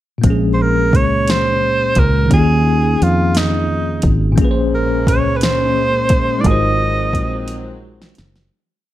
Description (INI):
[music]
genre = slow six-eight R&B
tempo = 58 BPM (dotted quarters)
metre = 6/8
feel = straight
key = unclear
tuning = A4 = 440 Hz
[part]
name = bell-like tine electric piano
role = accompaniment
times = 0.2-8.5 s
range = Bb2 to C5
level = -19 LUFS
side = left 1 dB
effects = medium stereo tremolo
[part]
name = fingered electric bass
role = bass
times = 0.2-8.5 s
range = Gb1 to F2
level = -18 LUFS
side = equal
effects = none
[part]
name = smooth R&B drum kit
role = drums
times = 0.2-8.5 s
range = hi-hat, kick drum, snare drum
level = -17 LUFS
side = equal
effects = none
[part]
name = breathy tenor saxophone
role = melody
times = 0.5-7.8 s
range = Eb4 to Eb5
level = -18 LUFS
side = right 2 dB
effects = slapback echo
[part]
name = dark studio string section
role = sustained chords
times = 4.4-8.5 s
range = Gb3 to Db4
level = -27 LUFS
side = left 2 dB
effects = none
[sound]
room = light reverb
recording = dark, warm production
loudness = -13 LUFS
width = side -14 dB against mid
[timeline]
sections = 0.2-8.5 bridge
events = fade-out 6.4-8.5; drum fill 7.5-8.5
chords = 0.2 Bbm9; 2.3 Eb9sus4; 4.4 Bbm9; 6.4 Ab13